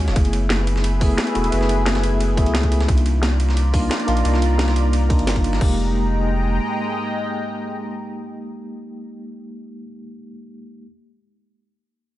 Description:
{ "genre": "liquid drum and bass", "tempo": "176 BPM", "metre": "4/4", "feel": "straight", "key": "unclear", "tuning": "A4 = 440 Hz", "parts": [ { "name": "tine electric piano", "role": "accompaniment", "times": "0.0-10.9 s", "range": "Ab3 to Ab4", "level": "-25 LUFS", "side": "equal", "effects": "medium tremolo, low-pass filter, digital delay" }, { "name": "lush unison pad", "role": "sustained chords", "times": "0.0-9.1 s", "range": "Gb3 to Bb5", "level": "-28 LUFS", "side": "left 1 dB", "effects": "chorus, phaser, sidechain pumping" }, { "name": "saturated sub bass", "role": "bass", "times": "0.0-6.6 s", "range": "Eb1 to Db2", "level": "-19 LUFS", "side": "equal", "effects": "none" }, { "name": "dusty soul sampler-style drum kit", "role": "drums", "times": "0.1-5.6 s", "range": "hi-hat, ride cymbal, snare drum", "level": "-28 LUFS", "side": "right 1 dB", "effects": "high-pass filter on cymbals, high-pass filter on snare, high-pass filter on hats, high-pass filter on room" }, { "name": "drum and bass drum kit", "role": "drums", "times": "0.2-5.7 s", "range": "crash cymbal, hi-hat, snare drum", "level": "-27 LUFS", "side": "left 1 dB", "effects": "overdrive, low-pass filter on snare, low-pass filter on hats, low-pass filter on cymbals" }, { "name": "electronic kick drum", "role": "drums", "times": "0.2-5.7 s", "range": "none", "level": "-19 LUFS", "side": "equal", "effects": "overdrive" } ], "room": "light reverb, digital ambience", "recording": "nothing above 11.0 kHz", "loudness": "-17 LUFS", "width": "side -15 dB against mid", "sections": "0.0-5.6 A section; 5.6-8.3 B section", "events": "filter sweep on drum 0.0-5.6", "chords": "0.2 Gbm11; 2.9 Cm11; 5.6 Fm11", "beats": "| 0.16 0.50 0.84 1.18 | 1.52 1.86 2.20 2.54 | 2.88 3.23 3.57 3.91 | 4.25 4.59 4.93 5.27 | 5.61 5.95 6.29 6.63 | 6.98 7.32 7.66 8.00" }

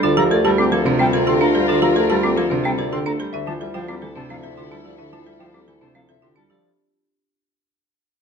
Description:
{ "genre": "classical, minimalist pattern music", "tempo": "109 BPM", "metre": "3/4", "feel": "straight", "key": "unclear", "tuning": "A4 = 440 Hz", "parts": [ { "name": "clean electric guitar", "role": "melody", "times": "0.0-6.7 s", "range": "G4 to E5", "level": "-28 LUFS", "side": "left 6 dB", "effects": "none" }, { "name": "mellow hollow alto flute", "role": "second line", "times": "0.0-6.5 s", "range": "E4 to F4", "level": "-24 LUFS", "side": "left 2 dB", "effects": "none" }, { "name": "warm baby grand piano", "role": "accompaniment", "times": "0.0-6.7 s", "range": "C3 to A3", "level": "-22 LUFS", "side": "right 2 dB", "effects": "none" }, { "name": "rich symphonic string section", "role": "sustained chords", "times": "0.0-6.5 s", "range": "E4 to Bb4", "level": "-30 LUFS", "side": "left 5 dB", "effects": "none" }, { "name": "folk marimba with hard mallets", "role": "arpeggios", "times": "0.0-6.7 s", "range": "C4 to Bb4", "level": "-23 LUFS", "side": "right 3 dB", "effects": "none" }, { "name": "clear bassoon", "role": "bass", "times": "0.0-6.5 s", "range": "D2", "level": "-26 LUFS", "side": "left 1 dB", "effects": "none" }, { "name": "mellow silver concert flute", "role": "arpeggios", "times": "0.2-6.4 s", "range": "F5 to D6", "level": "-26 LUFS", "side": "left 3 dB", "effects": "none" } ], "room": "moderate large studio reverb, RT60 1.1 s", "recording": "dark, warm production", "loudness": "-16 LUFS", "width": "side -6 dB against mid", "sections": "0.0-6.6 A section", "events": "fade-out 0.0-6.6", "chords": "0.0 Gm9/D; 3.3 Fmaj9/D", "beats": "| 0.04 0.59 1.14 | 1.69 2.24 2.79 | 3.34 3.89 4.44 | 4.99 5.54 6.09" }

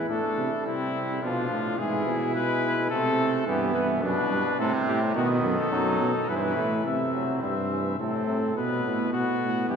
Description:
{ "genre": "classical, imitative canzona for brass ensemble", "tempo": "106 BPM", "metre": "3/4", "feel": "straight", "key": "A minor", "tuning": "A4 = 439 Hz", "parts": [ { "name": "clear trumpet", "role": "melody", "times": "0.0-9.8 s", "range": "E4 to E5", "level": "-29 LUFS", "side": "left 4 dB", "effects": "none" }, { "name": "clear trumpet", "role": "second line", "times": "0.0-9.8 s", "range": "A3 to E4", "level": "-31 LUFS", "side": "right 4 dB", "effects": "none" }, { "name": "brilliant trombone", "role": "accompaniment", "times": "0.0-9.8 s", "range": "B2 to A3", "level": "-30 LUFS", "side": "right 1 dB", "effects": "none" }, { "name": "dark euphonium", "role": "bass", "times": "0.0-9.8 s", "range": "F#2 to C3", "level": "-28 LUFS", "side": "equal", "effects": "none" } ], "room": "wet cathedral reverb, RT60 4.5 s", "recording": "heard from further back in the room", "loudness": "-24 LUFS", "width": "side -6 dB against mid", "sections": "0.1-6.9 A section; 6.9-9.8 B section", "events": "none", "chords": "0.1 Am; 1.2 Bdim; 1.8 E/G#; 2.9 Am/C; 3.5 Em/G; 4.6 Am7; 5.2 B; 6.3 Em/G; 6.9 C; 8.0 Am; 8.6 B5", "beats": "| 0.09 0.66 1.23 | 1.79 2.35 2.91 | 3.46 4.03 4.59 | 5.16 5.72 6.29 | 6.86 7.42 7.99 | 8.56 9.12 9.69" }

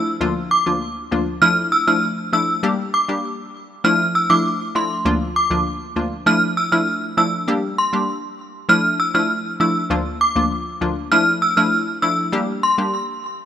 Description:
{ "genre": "dancehall", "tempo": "99 BPM", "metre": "4/4", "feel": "straight", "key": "D minor", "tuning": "A4 = 440 Hz", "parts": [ { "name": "synth chime", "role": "melody", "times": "0.0-12.7 s", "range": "C6 to F6", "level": "-18 LUFS", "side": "right 1 dB", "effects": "ensemble chorus, tremolo, digital delay" }, { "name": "analog pluck", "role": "accompaniment", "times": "0.0-12.9 s", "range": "D2 to G4", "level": "-21 LUFS", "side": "left 1 dB", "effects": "chorus" } ], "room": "light reverb, digital ambience", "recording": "rough home demo mix", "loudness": "-16 LUFS", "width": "side -10 dB against mid", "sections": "0.0-13.5 A section", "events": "none", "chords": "0.2 Bb/D; 1.4 Dmadd9; 2.6 Gm; 3.8 Dmadd9; 5.1 Bb/D; 6.3 Dmadd9; 7.5 Gm; 8.7 Dmadd9; 9.9 Bb/D; 11.1 Dmadd9; 12.3 Gm", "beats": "0.21 0.81 | 1.42 2.03 2.63 3.24 | 3.85 4.45 5.06 5.66 | 6.27 6.88 7.48 8.09 | 8.69 9.30 9.90 10.51 | 11.12 11.72 12.33" }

